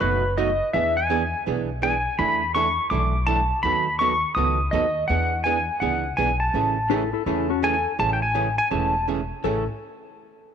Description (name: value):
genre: country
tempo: 165 BPM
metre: 4/4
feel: swing 64% on 8ths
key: A major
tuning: A4 = 440 Hz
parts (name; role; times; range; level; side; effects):
- pedal steel guitar; melody; 0.0-9.1 s; B4 to D#6; -23 LUFS; left 1 dB; slapback echo
- archtop guitar, miked and amplified; accompaniment; 0.0-9.6 s; A2 to A4; -27 LUFS; right 12 dB; none
- upright bass; bass; 0.0-9.7 s; E1 to E2; -28 LUFS; left 1 dB; none
- clean lap steel guitar; second line; 6.9-9.7 s; C#4 to A4; -26 LUFS; left 15 dB; none
room: moderate plate reverb, RT60 3.2 s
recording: 1960s-style stereo with parts hard left and right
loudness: -20 LUFS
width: side -8 dB against mid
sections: 0.0-8.0 A section; 8.0-9.4 B section; 9.4-10.5 C section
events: none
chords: 0.0 B7; 0.7 E7; 2.2 E7sus4; 3.6 B7/D#; 5.1 E7; 6.5 Amaj7